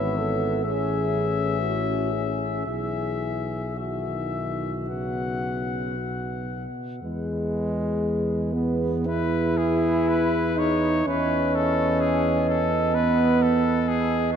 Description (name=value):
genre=classical, hymn-like piece for brass band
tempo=53-66 BPM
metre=4/4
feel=rubato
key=E major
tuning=A4 = 440 Hz
part: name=clear cornet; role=melody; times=0.0-14.4 s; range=F#4 to F#5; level=-30 LUFS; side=left 6 dB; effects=none
part: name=warm French horn section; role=second line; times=0.0-14.4 s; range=F#4 to D#5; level=-30 LUFS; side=right 4 dB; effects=none
part: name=mellow trombone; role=accompaniment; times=0.0-14.3 s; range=B2 to E4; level=-26 LUFS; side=right 2 dB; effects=none
part: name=warm euphonium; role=accompaniment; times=0.0-14.4 s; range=B3 to B4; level=-33 LUFS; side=left 4 dB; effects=none
part: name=dark tuba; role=bass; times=0.0-14.4 s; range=G#1 to E2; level=-29 LUFS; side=left 1 dB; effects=none
room=wet cathedral reverb, RT60 6.2 s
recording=in a vast, echoing space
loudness=-22 LUFS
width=side -8 dB against mid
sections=0.0-7.0 A section; 7.0-14.4 B section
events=none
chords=0.0 E/G#; 0.6 A; 2.7 Bsus4; 4.9 B5; 7.0 E; 11.1 B/E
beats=0.64 1.60 | 2.67 3.78 4.88 5.97 | 7.04 8.03 9.07 10.08 | 11.07 12.01 12.94 13.88